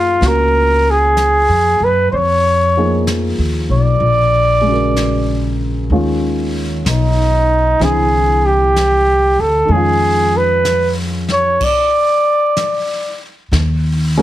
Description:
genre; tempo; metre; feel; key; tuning
jazz ballad; 63 BPM; 4/4; swing 68% on 8ths; unclear; A4 = 443 Hz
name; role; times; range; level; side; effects
clear flugelhorn; melody; 0.0-13.2 s; Eb4 to D5; -13 LUFS; right 1 dB; none
dark baby grand piano; accompaniment; 0.0-14.2 s; C#3 to Bb4; -20 LUFS; equal; none
upright bass; bass; 0.0-14.2 s; Bb1 to Gb2; -16 LUFS; equal; none
jazz brush drum kit; drums; 0.2-14.2 s; brushed snare drum, crash cymbal, hi-hat, kick drum, snare drum; -26 LUFS; left 1 dB; none
room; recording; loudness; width
light reverb; heavily compressed radio sound; -12 LUFS; side -14 dB against mid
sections
0.0-13.5 A section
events
none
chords
0.0 Gbmaj9; 2.1 Fm7b5; 4.0 Bb7alt; 5.9 Db9; 7.8 C; 9.7 Db9/F; 11.6 N.C.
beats
0.21 1.17 | 2.12 3.07 4.01 4.96 | 5.91 6.86 7.80 8.75 | 9.70 10.65 11.61 12.57 | 13.53

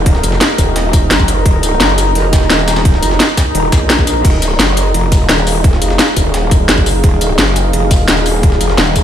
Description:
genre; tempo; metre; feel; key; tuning
dark technical drum and bass; 172 BPM; 4/4; straight; Eb minor; A4 = 441 Hz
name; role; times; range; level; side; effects
deep dark ambient pad; sustained chords; 0.0-9.0 s; Eb4 to Bb5; -17 LUFS; equal; chorus, built-in reverb, sidechain pumping
growl bass; bass; 0.0-9.0 s; Eb1 to Bb1; -14 LUFS; equal; chorus, sidechain pumping
breakbeat sampler-style drum kit; drums; 0.1-9.0 s; hi-hat, ride cymbal, snare drum; -22 LUFS; right 1 dB; high-pass filter on cymbals, small room ambience, high-pass filter on snare, high-pass filter on hats
drum and bass drum kit; drums; 0.1-9.0 s; crash cymbal, hi-hat, snare drum, tambourine; -15 LUFS; left 1 dB; small room ambience
electronic kick drum; drums; 0.1-9.0 s; none; -11 LUFS; equal; small room ambience
room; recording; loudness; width
light reverb; played on a big sound system in a bare room, stone room reverb; -9 LUFS; side -10 dB against mid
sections
0.0-9.0 A section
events
none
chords
0.0 Eb5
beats
| 0.06 0.41 0.76 1.11 | 1.46 1.80 2.15 2.50 | 2.85 3.20 3.55 3.90 | 4.25 4.60 4.95 5.29 | 5.64 5.99 6.34 6.69 | 7.04 7.39 7.74 8.08 | 8.43 8.78

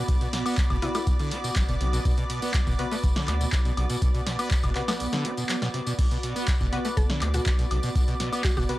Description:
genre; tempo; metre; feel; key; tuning
acid house; 122 BPM; 4/4; straight; B minor; A4 = 438 Hz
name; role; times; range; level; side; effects
mallet-like synth pluck; melody; 0.0-1.0, 7.0-8.6 s; E4 to A4; -36 LUFS; equal; chorus, tape echo
lush unison pad; sustained chords; 0.0-8.8 s; D5; -36 LUFS; right 1 dB; chorus, sidechain pumping
acid bass, saw; riff; 0.0-8.8 s; B1 to D4; -31 LUFS; equal; tube saturation, lush chorus, sidechain pumping, analog delay
filtered dub chord stab; stabs; 0.0-8.8 s; B3 to B4; -35 LUFS; left 3 dB; chorus, analog delay
granular cloud pad; texture; 0.0-8.8 s; B3 to B5; -34 LUFS; right 1 dB; built-in reverb, sidechain pumping
saturated sub bass; bass; 0.1-8.7 s; F#1 to D2; -28 LUFS; equal; sidechain pumping
electronic kick drum; drums; 0.1-8.7 s; none; -25 LUFS; equal; none
punchy analog drum machine; drums; 0.1-8.8 s; crash cymbal, handclaps, hi-hat, snare drum, woodblock; -32 LUFS; left 1 dB; none
tambourine; percussion; 0.1-8.7 s; none; -40 LUFS; left 2 dB; none
room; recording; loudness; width
little or no reverb; dry, gritty hardware recording, cassette tape; -23 LUFS; side -17 dB against mid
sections
0.0-8.8 A section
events
break 5.0-6.0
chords
0.0 B5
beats
| 0.09 0.58 1.07 1.56 | 2.05 2.54 3.04 3.53 | 4.02 4.51 5.00 5.50 | 5.99 6.48 6.97 7.46 | 7.95 8.45

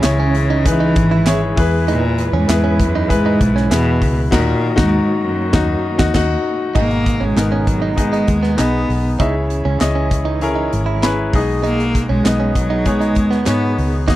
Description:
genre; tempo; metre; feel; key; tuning
piano-driven pop; 98 BPM; 4/4; straight; G# minor; A4 = 440 Hz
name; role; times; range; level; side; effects
rich cello; melody; 0.0-13.9 s; F#2 to B3; -18 LUFS; equal; none
clear grand piano; accompaniment; 0.0-14.2 s; G#2 to B5; -20 LUFS; left 3 dB; none
warm studio string section; sustained chords; 0.0-14.2 s; B2 to B4; -28 LUFS; right 2 dB; none
direct-recorded clean electric guitar; riff; 0.0-14.2 s; B3 to E4; -22 LUFS; right 8 dB; none
vintage muted fingered electric bass; bass; 0.0-14.2 s; G#1 to G#2; -20 LUFS; equal; none
modern studio drum kit; drums; 0.0-14.2 s; crash cymbal, handclaps, hi-hat, kick drum, snare drum; -18 LUFS; equal; none
room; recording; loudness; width
light reverb; dry, close 1970s-style studio recording; -14 LUFS; side -15 dB against mid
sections
0.0-6.8 A section; 6.8-14.2 B section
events
band accent 4.3-6.8; grand piano fill 10.7-11.6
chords
0.0 C#m; 1.6 E; 4.3 D#m; 6.8 G#m; 9.2 C#m; 11.3 G#m/B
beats
0.04 0.66 1.27 | 1.88 2.49 3.10 3.71 | 4.32 4.93 5.54 6.15 | 6.76 7.37 7.98 8.59 | 9.20 9.81 10.42 11.03 | 11.64 12.25 12.86 13.47 | 14.08

